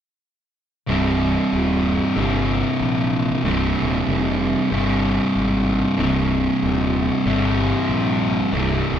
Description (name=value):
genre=metal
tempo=94 BPM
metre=4/4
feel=swing 59% on 8ths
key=C minor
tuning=A4 = 438 Hz
part: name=fuzz guitar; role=riff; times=0.9-9.0 s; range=C2 to C3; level=-19 LUFS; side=equal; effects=distortion
part: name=fuzz fingered electric bass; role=bass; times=0.9-9.0 s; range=C1 to Bb1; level=-24 LUFS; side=left 1 dB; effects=overdrive
room=moderate large studio reverb, RT60 0.8 s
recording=band playing live in one room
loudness=-18 LUFS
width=side -9 dB against mid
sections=0.9-9.0 A section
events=none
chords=0.9 Cm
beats=| 0.89 1.52 2.17 2.80 | 3.44 4.08 4.72 5.36 | 6.00 6.63 7.27 7.90 | 8.54